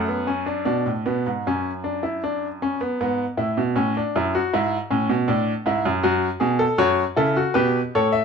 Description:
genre	classical, baroque-style 3-part fugue for grand piano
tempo	78 BPM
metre	4/4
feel	straight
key	unclear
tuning	A4 = 440 Hz
part	bright baby grand piano	solo	0.0-8.2 s	F#2 to F#5	-20 LUFS	equal	none
room	moderate stone room reverb, RT60 1.1 s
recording	dark, warm production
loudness	-20 LUFS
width	side -6 dB against mid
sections	0.7-8.2 A section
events	none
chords	0.0 F#m; 5.3 D; 6.8 F#m

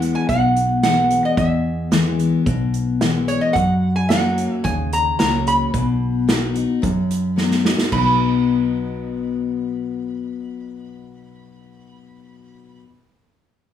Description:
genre	honky-tonk and classic country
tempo	110 BPM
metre	4/4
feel	straight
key	B major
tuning	A4 = 438 Hz
part	lap resonator guitar	melody	0.0-12.8 s	C#5 to B5	-20 LUFS	right 2 dB	none
part	picked steel-string acoustic guitar	accompaniment	0.0-12.9 s	E2 to F#4	-21 LUFS	left 5 dB	none
part	hollow-body short-scale picked electric bass	bass	0.0-12.8 s	B1 to F#2	-22 LUFS	right 1 dB	none
part	unplugged drum kit	drums	0.0-8.0 s	crash cymbal, hi-hat, kick drum, snare drum	-23 LUFS	right 2 dB	none
room	moderate studio reverb, RT60 0.5 s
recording	small room reverb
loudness	-16 LUFS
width	side -10 dB against mid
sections	0.0-7.9 A section; 7.9-12.3 B section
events	drum fill 7.4-7.9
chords	0.0 E; 3.6 F#; 5.7 B

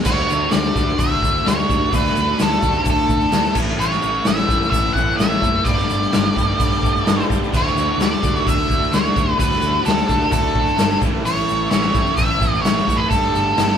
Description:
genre	classic rock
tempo	129 BPM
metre	4/4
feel	straight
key	unclear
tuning	A4 = 444 Hz
part	bright tonewheel organ	sustained chords	0.0-13.8 s	A3 to Bb4	-31 LUFS	right 1 dB	none
part	cranked stack guitar	riff	0.0-13.8 s	G2 to D4	-25 LUFS	equal	overdrive
part	raw garage drum kit	drums	0.0-13.7 s	crash cymbal, hi-hat, kick drum, snare drum	-20 LUFS	left 1 dB	none
part	octave-fuzz lead guitar	melody	0.1-13.8 s	A4 to F#5	-20 LUFS	right 1 dB	distortion
part	raw garage guitar	riff	0.1-13.8 s	A2 to G4	-26 LUFS	left 2 dB	overdrive
part	hollow-body short-scale picked electric bass	bass	0.1-13.7 s	F#1 to D2	-26 LUFS	equal	none
part	tube shaker	percussion	0.1-13.7 s	none	-38 LUFS	left 6 dB	none
room	moderate studio reverb, RT60 0.8 s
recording	band playing live in one room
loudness	-15 LUFS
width	side -8 dB against mid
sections	0.1-13.8 A section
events	none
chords	0.1 Dadd9; 3.6 A; 5.7 Gsus2; 7.5 Dadd9; 11.0 A; 13.1 Gsus2

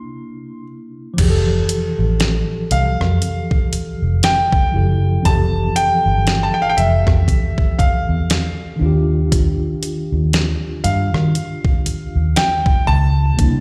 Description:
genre	contemporary R&B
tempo	59 BPM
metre	4/4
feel	swing 58% on 16ths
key	F major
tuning	A4 = 440 Hz
part	clear concert grand piano	melody	0.0-13.6 s	E5 to C6	-23 LUFS	equal	tape echo
part	mellow tine electric piano	accompaniment	0.0-13.6 s	C3 to A4	-25 LUFS	equal	none
part	vintage muted fingered electric bass	bass	1.2-13.6 s	F1 to Eb3	-19 LUFS	equal	none
part	detuned 8-bit digital drum machine	drums	1.2-13.6 s	crash cymbal, hi-hat, kick drum, rim click, snare drum	-20 LUFS	equal	none
room	light reverb, digital ambience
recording	played on a big sound system in a bare room, large studio reverb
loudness	-17 LUFS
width	mono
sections	0.0-1.2 A section; 1.2-13.6 A section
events	break 0.0-1.2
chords	0.0 C9; 1.2 Fmaj9; 8.8 Ebmaj9

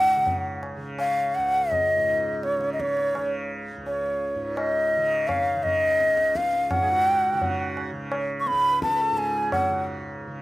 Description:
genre	indian classical, Hindustani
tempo	84 BPM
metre	5/4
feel	straight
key	C# major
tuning	A4 = 445 Hz
part	breathy bright bansuri	melody	0.0-9.9 s	C#5 to C#6	-22 LUFS	equal	none
part	tanpura	drone	0.0-10.4 s	C#2 to C#3	-32 LUFS	right 1 dB	none
part	tabla	percussion	0.3-9.8 s	none	-33 LUFS	equal	slapback echo
part	hand-pumped harmonium	second line	6.8-10.0 s	F#4 to B4	-34 LUFS	right 4 dB	slapback echo
room	little or no reverb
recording	recorded outdoors, with no room sound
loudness	-22 LUFS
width	side -17 dB against mid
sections	0.0-10.4 A section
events	speeding up 0.0-10.4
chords	none

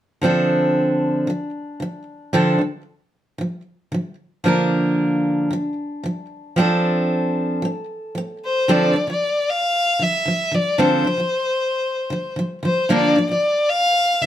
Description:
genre	pop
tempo	114 BPM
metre	4/4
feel	straight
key	D minor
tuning	A4 = 440 Hz
part	picked steel-string acoustic guitar	accompaniment	0.2-14.3 s	D3 to Bb4	-18 LUFS	right 1 dB	none
part	warm violin	melody	8.5-14.3 s	C5 to F5	-19 LUFS	left 1 dB	none
room	wet studio reverb, RT60 0.6 s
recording	none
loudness	-18 LUFS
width	side -11 dB against mid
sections	0.2-8.7 A section; 8.7-14.3 B section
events	none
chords	0.2 Dm7; 4.5 Bb/D; 6.6 F6; 8.7 Dm7; 12.9 Bb/D

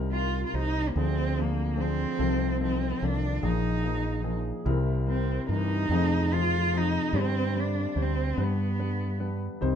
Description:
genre	acoustic folk-pop ballad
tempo	48 BPM (dotted quarters)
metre	6/8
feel	straight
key	unclear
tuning	A4 = 441 Hz
part	warm baby grand piano	accompaniment	0.0-9.8 s	F1 to C5	-30 LUFS	left 4 dB	none
part	fretless electric bass	bass	0.0-9.8 s	Bb1 to G2	-28 LUFS	right 1 dB	none
part	warm cello	melody	0.1-9.3 s	Bb3 to F4	-31 LUFS	right 2 dB	none
room	light reverb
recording	minimal, uncompressed stereo recording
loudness	-25 LUFS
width	side -8 dB against mid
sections	0.0-9.8 A section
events	none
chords	0.0 Cm7; 1.0 Dm7b5; 2.2 F7/C; 3.4 Bb7sus4; 4.7 C7; 5.9 Fm7; 7.1 Gsus4; 8.4 G

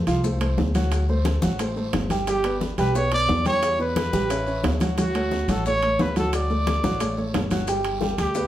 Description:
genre	Afro-Cuban jazz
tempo	177 BPM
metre	4/4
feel	straight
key	D major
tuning	A4 = 441 Hz
part	warm grand piano	accompaniment	0.1-8.5 s	F3 to G5	-26 LUFS	right 1 dB	none
part	upright bass	bass	0.1-8.5 s	G1 to E2	-26 LUFS	equal	none
part	bongos	percussion	0.1-8.5 s	none	-33 LUFS	left 5 dB	none
part	guiro	percussion	0.1-8.5 s	none	-42 LUFS	right 3 dB	none
part	maracas	percussion	0.1-8.5 s	none	-41 LUFS	left 5 dB	none
part	timbales	percussion	0.1-8.4 s	none	-32 LUFS	right 4 dB	none
part	congas	percussion	0.2-8.5 s	none	-30 LUFS	left 2 dB	none
part	warm trumpet	melody	2.3-8.5 s	F#4 to D5	-24 LUFS	equal	none
room	wet studio reverb, RT60 0.6 s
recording	heard from further back in the room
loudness	-20 LUFS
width	side -12 dB against mid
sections	0.0-7.7 A section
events	none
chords	0.0 F; 0.9 D7; 2.3 G; 3.6 Em7; 4.3 A69; 5.0 Dmaj7; 7.7 G

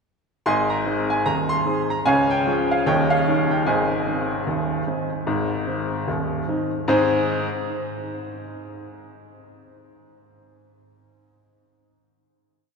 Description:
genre	ragtime piano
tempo	75 BPM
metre	2/4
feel	swing 60% on 16ths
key	Ab major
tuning	A4 = 440 Hz
part	bright grand piano	solo	0.5-7.5 s	Eb1 to C6	-20 LUFS	equal	none
room	wet cathedral reverb, RT60 5.5 s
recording	recorded in a church or concert hall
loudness	-20 LUFS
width	side -4 dB against mid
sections	0.5-6.9 A section; 6.9-8.5 final chord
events	none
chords	0.5 Ab; 2.1 Db; 2.9 Eb9; 3.7 Ab

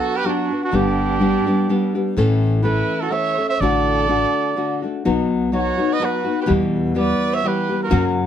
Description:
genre	mexican folk, mariachi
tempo	125 BPM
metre	3/4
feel	swing 54% on 8ths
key	unclear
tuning	A4 = 435 Hz
part	clear trumpet	melody	0.0-8.0 s	F#4 to E5	-22 LUFS	right 4 dB	none
part	rich violin	second line	0.0-8.0 s	D4 to C#5	-27 LUFS	right 6 dB	none
part	nylon-string guitar	accompaniment	0.0-8.3 s	E2 to A4	-19 LUFS	left 3 dB	none
part	upright bass	bass	0.7-8.3 s	G1 to F#2	-23 LUFS	equal	none
room	light reverb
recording	dark, warm production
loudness	-17 LUFS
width	side -9 dB against mid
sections	0.0-8.3 A section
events	none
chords	0.0 Bm; 0.7 G; 2.2 A; 3.6 D/A; 5.1 B; 6.5 Em

